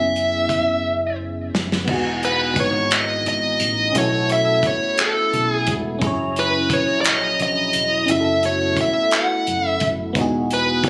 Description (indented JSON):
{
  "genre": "slow six-eight R&B",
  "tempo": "58 BPM (dotted quarters)",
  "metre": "6/8",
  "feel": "straight",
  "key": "E major",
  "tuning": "A4 = 438 Hz",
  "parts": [
    { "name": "dark smooth lead guitar", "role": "melody", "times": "0.0-10.9 s", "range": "A4 to F#5", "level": "-22 LUFS", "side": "equal", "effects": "overdrive" },
    { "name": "FM electric piano", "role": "accompaniment", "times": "0.0-10.9 s", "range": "B3 to C#5", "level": "-27 LUFS", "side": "equal", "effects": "chorus, phaser" },
    { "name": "deep dub fingered electric bass", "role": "bass", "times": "0.0-10.9 s", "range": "E1 to B1", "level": "-30 LUFS", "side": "equal", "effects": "none" },
    { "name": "warm soul drum kit", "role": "drums", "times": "0.2-10.9 s", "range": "crash cymbal, handclaps, hi-hat, kick drum, snare drum", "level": "-25 LUFS", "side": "equal", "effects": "none" },
    { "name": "tonewheel organ", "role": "sustained chords", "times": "1.9-10.9 s", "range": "E3 to A#5", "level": "-32 LUFS", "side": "equal", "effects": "overdrive, chorus vibrato, slow rotary speaker" }
  ],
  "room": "light reverb, studio reverb",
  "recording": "recorded on a phone in the room, club reverb, compression",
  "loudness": "-20 LUFS",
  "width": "mono",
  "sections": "0.0-1.9 A section; 1.9-10.9 B section",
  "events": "drum fill 0.8-1.9",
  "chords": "0.0 F#7sus4; 1.9 Emaj7; 3.9 B9sus4; 6.0 F#9; 8.1 B9sus4/F#; 10.2 Emaj7"
}